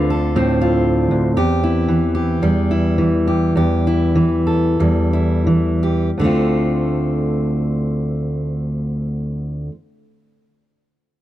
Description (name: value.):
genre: folk, solo fingerstyle acoustic guitar.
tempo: 41-62 BPM.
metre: 4/4.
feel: rubato.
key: D minor.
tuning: A4 = 440 Hz.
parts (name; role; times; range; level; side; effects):
fingerpicked steel-string acoustic guitar; solo; 0.0-9.8 s; D2 to A4; -15 LUFS; equal; none.
room: little or no reverb.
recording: dry, close 1970s-style studio recording.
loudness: -15 LUFS.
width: side -13 dB against mid.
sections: 0.0-6.2 A section; 6.2-11.2 B section.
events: slowing down 0.0-6.2.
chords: 0.0 Dm7; 1.4 Emadd11; 6.2 Dm7.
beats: 0.36 | 1.36 2.41 3.54 4.79 | 6.18 7.60 9.00.